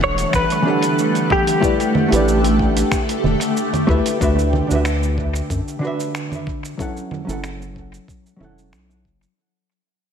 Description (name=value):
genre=sunset chillout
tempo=93 BPM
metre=4/4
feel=swing 53% on 16ths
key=unclear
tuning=A4 = 439 Hz
part: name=direct-recorded clean electric guitar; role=melody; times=0.0-3.5 s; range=G4 to C#5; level=-21 LUFS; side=equal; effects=analog chorus, tape echo
part: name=hollow-body jazz guitar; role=accompaniment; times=0.0-9.4 s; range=D3 to F#5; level=-21 LUFS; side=moving between left 3 dB and right 3 dB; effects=auto-pan, low-pass filter, tape echo
part: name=shimmering ambient pad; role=sustained chords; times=0.0-4.2 s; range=D3 to F#5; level=-22 LUFS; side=equal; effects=chorus, built-in reverb, phaser
part: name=round analog bass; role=bass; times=0.0-9.3 s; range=E1 to F#2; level=-20 LUFS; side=equal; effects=none
part: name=electronic kick drum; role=drums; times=0.0-9.2 s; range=none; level=-25 LUFS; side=equal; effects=none
part: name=dusty soul sampler-style drum kit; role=drums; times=0.2-9.3 s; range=cabasa, congas, finger snaps, hi-hat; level=-26 LUFS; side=right 3 dB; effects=tape echo
room=wet echo chamber reverb, RT60 1.2 s, digital ambience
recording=echo-heavy mix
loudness=-16 LUFS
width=side -7 dB against mid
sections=0.0-4.2 A section; 4.2-9.4 B section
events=fade-out 4.2-9.4; filter sweep on hollow-body jazz guitar 4.2-9.4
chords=0.0 Em11; 1.6 A7sus4; 4.2 D6; 6.8 F#m7